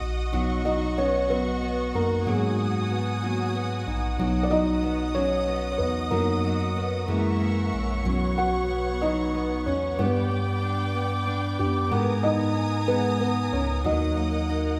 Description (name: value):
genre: six-eight pop ballad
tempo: 62 BPM (dotted quarters)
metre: 6/8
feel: straight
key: B major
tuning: A4 = 438 Hz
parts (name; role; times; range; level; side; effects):
- felt-muted upright piano; accompaniment; 0.0-14.8 s; F#3 to F#5; -28 LUFS; equal; none
- rich studio string section; sustained chords; 0.0-14.8 s; B3 to D#6; -34 LUFS; equal; none
- mellow tine electric piano; bass; 0.0-14.8 s; A#1 to G#2; -31 LUFS; equal; none
- fingerpicked steel-string acoustic guitar; arpeggios; 0.3-14.8 s; E3 to A#4; -35 LUFS; equal; none
room: wet scoring stage reverb, RT60 1.9 s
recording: recorded in a church or concert hall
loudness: -25 LUFS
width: mono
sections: 0.0-14.8 A section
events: felt piano solo 0.0-14.8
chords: 0.0 B; 2.3 G#m7; 4.2 B; 6.1 B/F#; 7.1 F#7; 8.1 Bsus2; 10.0 G; 11.9 G#madd9; 13.9 D#m